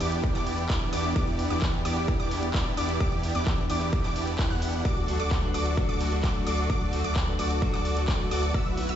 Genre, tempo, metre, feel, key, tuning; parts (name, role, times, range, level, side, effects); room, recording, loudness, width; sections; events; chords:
EDM, festival progressive house; 130 BPM; 4/4; straight; A4 = 440 Hz
lush unison pad; sustained chords; 0.0-9.0 s; D3 to G4; -35 LUFS; equal; chorus, sidechain pumping
wide unison pluck; arpeggios; 0.0-9.0 s; D6 to F#6; -35 LUFS; equal; sidechain pumping, digital delay
supersaw chords; riff; 0.0-9.0 s; B3 to F#5; -31 LUFS; right 1 dB; sidechain pumping, digital delay
saturated sub bass; bass; 0.0-9.0 s; B1 to E2; -31 LUFS; equal; sidechain pumping
big-room dance drum kit; drums; 0.0-9.0 s; handclaps, hi-hat; -36 LUFS; equal
electronic kick drum; drums; 0.2-8.6 s; -28 LUFS; equal; overdrive
clean electric guitar; accompaniment; 5.1-8.9 s; F#3 to B4; -34 LUFS; left 4 dB; vintage 12-bit sampler grit, sidechain pumping, digital delay
light reverb; played on a big sound system in a bare room, stone room reverb, nothing above 7.9 kHz; -24 LUFS; side -10 dB against mid
0.0-9.0 A section
0.0 Em7; 4.9 D